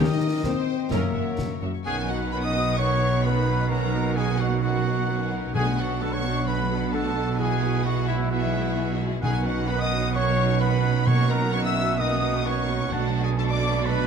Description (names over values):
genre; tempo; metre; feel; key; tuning
cinematic, heroic adventure film score; 130 BPM; 4/4; straight; B major; A4 = 440 Hz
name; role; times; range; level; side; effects
warm symphonic violin section; melody; 0.0-14.1 s; Bb4 to E6; -34 LUFS; left 4 dB; none
dark clarinet; second line; 0.0-14.1 s; C#4 to Db5; -37 LUFS; left 4 dB; none
mellow flute section; second line; 0.0-14.1 s; E5 to E6; -36 LUFS; left 2 dB; none
warm oboe; second line; 0.0-14.1 s; Eb5 to A5; -35 LUFS; right 2 dB; none
warm symphonic viola section; accompaniment; 0.0-14.1 s; D3 to Fb5; -34 LUFS; right 4 dB; none
mellow French horn section; sustained chords; 0.0-14.1 s; F#3 to F#4; -34 LUFS; left 7 dB; none
concert harp; arpeggios; 0.0-14.1 s; Gb2 to Fb6; -34 LUFS; left 14 dB; none
clear symphonic double bass section; bass; 0.0-14.1 s; Gb1 to Eb2; -28 LUFS; right 6 dB; none
rich symphonic cello section; bass; 0.0-14.1 s; Eb2 to B2; -28 LUFS; right 4 dB; none
timpani; percussion; 0.0-0.6, 5.5-6.2, 9.2-13.6 s; B2 to Eb3; -29 LUFS; left 2 dB; none
rich symphonic violin section; second line; 0.1-14.1 s; B3 to Eb5; -38 LUFS; left 3 dB; none
concert snare drum and concert bass drum; drums; 0.4-1.6 s; none; -32 LUFS; equal; none
mellow trumpet section; stabs; 1.9-14.1 s; E4 to E5; -29 LUFS; equal; none
room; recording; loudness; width
light reverb; close, detailed microphones; -22 LUFS; side -6 dB against mid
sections
0.0-1.9 A section; 1.9-14.1 B section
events
none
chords
0.0 Eb; 0.9 Gb7; 1.9 Badd9; 3.7 F#6/B; 5.5 D/B; 7.4 Eadd9/B; 9.2 Badd9; 11.1 F#6/B; 12.9 D/B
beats
0.43 0.91 1.38 | 1.85 2.32 2.79 3.25 | 3.71 4.17 4.63 5.09 | 5.55 6.01 6.47 6.93 | 7.39 7.84 8.31 8.77 | 9.23 9.69 10.15 10.61 | 11.07 11.53 11.99 12.46 | 12.92 13.39 13.85